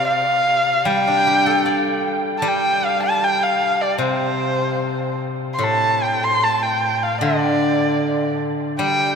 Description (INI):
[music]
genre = chinese traditional, Chinese chamber ensemble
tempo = 76 BPM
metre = 2/4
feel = rubato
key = unclear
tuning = A4 = 440 Hz
[part]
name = dark erhu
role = melody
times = 0.0-9.2 s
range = C5 to C6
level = -18 LUFS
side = equal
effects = none
[part]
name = steel-string zither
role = accompaniment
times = 0.0-9.2 s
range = A2 to D5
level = -22 LUFS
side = left 1 dB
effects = none
[sound]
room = wet cathedral reverb, RT60 6.7 s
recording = in a vast, echoing space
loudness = -17 LUFS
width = side -6 dB against mid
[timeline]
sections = 0.0-9.2 A section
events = none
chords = none